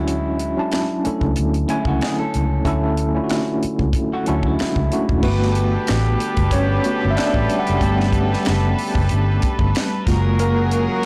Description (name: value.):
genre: R&B, neo-soul.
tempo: 93 BPM.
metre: 4/4.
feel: swing 55% on 16ths.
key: unclear.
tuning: A4 = 440 Hz.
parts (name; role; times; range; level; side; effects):
electric guitar through a small old amp; second line; 0.0-5.2 s; G#3 to A4; -30 LUFS; equal; slapback echo, plate reverb.
tine electric piano; accompaniment; 0.0-11.1 s; D3 to A5; -24 LUFS; equal; medium tremolo, plate reverb.
vintage muted fingered electric bass; bass; 0.0-10.9 s; E1 to D2; -22 LUFS; equal; transformer saturation.
tight funk drum kit; drums; 0.1-11.1 s; crash cymbal, finger snaps, hi-hat, kick drum, snare drum; -26 LUFS; equal; none.
warm studio string section; sustained chords; 5.2-11.1 s; F#3 to B4; -28 LUFS; equal; plate reverb.
warm horn section; stabs; 5.2-11.1 s; C#3 to G4; -29 LUFS; equal; plate reverb.
room: moderate studio reverb, RT60 0.8 s.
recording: blown-out, overdriven recording, overdrive.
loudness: -19 LUFS.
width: mono.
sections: 0.0-5.2 A section; 5.2-11.1 B section.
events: tine electric piano solo 5.2-11.1.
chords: 0.0 Dmaj9; 5.2 Gmaj9; 10.1 F#maj9.